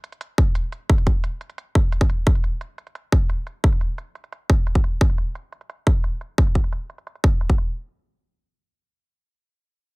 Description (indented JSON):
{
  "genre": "dark technical drum and bass",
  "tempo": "175 BPM",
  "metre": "4/4",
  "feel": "straight",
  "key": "none",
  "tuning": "none",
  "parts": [
    { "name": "electronic hi-hat", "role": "drums", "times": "0.0-7.7 s", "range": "none", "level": "-41 LUFS", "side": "right 4 dB", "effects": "low-pass filter on hats, low-pass filter on snare" },
    { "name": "electronic kick drum", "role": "drums", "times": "0.4-7.6 s", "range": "none", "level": "-18 LUFS", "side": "equal", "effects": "none" }
  ],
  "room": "digital ambience",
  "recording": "none",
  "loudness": "-19 LUFS",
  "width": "side -32 dB against mid",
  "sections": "0.0-7.8 A section",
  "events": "filter sweep on drum 0.0-7.8",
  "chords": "none"
}